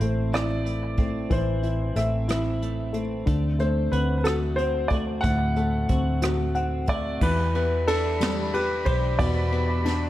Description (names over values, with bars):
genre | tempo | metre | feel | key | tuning
six-eight pop ballad | 61 BPM (dotted quarters) | 6/8 | straight | unclear | A4 = 440 Hz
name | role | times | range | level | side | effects
warm concert grand piano | melody | 0.0-10.1 s | A4 to F#5 | -29 LUFS | equal | digital delay
warm concert grand piano | accompaniment | 0.0-10.1 s | A2 to F#5 | -28 LUFS | left 3 dB | none
twelve-string electric guitar | arpeggios | 0.0-10.1 s | E3 to G4 | -34 LUFS | right 3 dB | analog chorus
vintage muted fingered electric bass | bass | 0.0-10.1 s | A1 to E2 | -27 LUFS | equal | none
jazz brush drum kit | drums | 0.0-10.0 s | crash cymbal, hi-hat, kick drum, ride cymbal, rim click, snare drum | -29 LUFS | right 1 dB | none
clear woodwind section | sustained chords | 7.2-10.1 s | G4 to B5 | -34 LUFS | right 1 dB | none
room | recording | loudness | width
light reverb, small room reverb | none | -22 LUFS | side -14 dB against mid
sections
0.0-7.2 A section; 7.2-10.1 B section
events
grand piano fill 6.2-7.2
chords
0.0 Am; 3.3 D7; 7.2 Em7